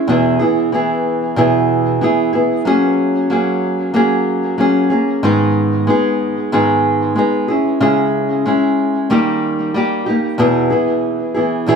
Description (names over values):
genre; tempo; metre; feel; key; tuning
pop; 93 BPM; 4/4; straight; unclear; A4 = 439 Hz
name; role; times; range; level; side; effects
nylon-string guitar; solo; 0.0-11.8 s; E2 to G#4; -13 LUFS; equal; digital delay
room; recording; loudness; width
moderate small room reverb, RT60 0.5 s; none; -13 LUFS; side -6 dB against mid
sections
0.0-10.4 A section; 10.4-11.8 B section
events
none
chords
0.1 E; 2.7 F#add9; 5.2 G#m; 7.5 C#m; 9.1 D#; 10.4 E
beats
| 0.10 0.74 1.39 2.03 | 2.67 3.31 3.96 4.60 | 5.24 5.88 6.53 7.17 | 7.81 8.46 9.10 9.74 | 10.38 11.03 11.67